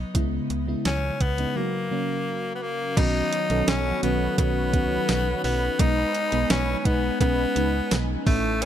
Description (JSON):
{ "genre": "1980s-style pop", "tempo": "85 BPM", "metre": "4/4", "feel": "straight", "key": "B mixolydian", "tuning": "A4 = 440 Hz", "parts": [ { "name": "FM electric piano with soft pad layer", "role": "accompaniment", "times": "0.0-8.7 s", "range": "C#3 to A4", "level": "-27 LUFS", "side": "equal", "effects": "chorus, shimmer reverb" }, { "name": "slap-like FM bass", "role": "bass", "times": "0.0-8.7 s", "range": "A1 to C#2", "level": "-28 LUFS", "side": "right 1 dB", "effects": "none" }, { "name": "clean 12-bit digital drum machine", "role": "drums", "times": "0.1-8.7 s", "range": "crash cymbal, hi-hat, kick drum, snare drum, tambourine", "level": "-25 LUFS", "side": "right 1 dB", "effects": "gated reverb" }, { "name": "raspy tenor saxophone", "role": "melody", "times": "0.9-8.7 s", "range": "A3 to D#4", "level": "-27 LUFS", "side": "left 2 dB", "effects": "shimmer reverb" }, { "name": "warm analog pad", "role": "sustained chords", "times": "3.0-8.7 s", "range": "C#4 to C#6", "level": "-35 LUFS", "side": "equal", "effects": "chorus, shimmer reverb" }, { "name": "cowbell", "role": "percussion", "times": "3.0-8.7 s", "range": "none", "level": "-36 LUFS", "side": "right 9 dB", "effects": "none" } ], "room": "light reverb", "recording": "none", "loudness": "-22 LUFS", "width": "side -10 dB against mid", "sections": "0.0-3.0 A section; 3.0-8.7 B section", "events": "break 1.6-3.0", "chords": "0.1 C#m7; 1.6 F#; 3.0 Badd9; 5.8 G#m/B" }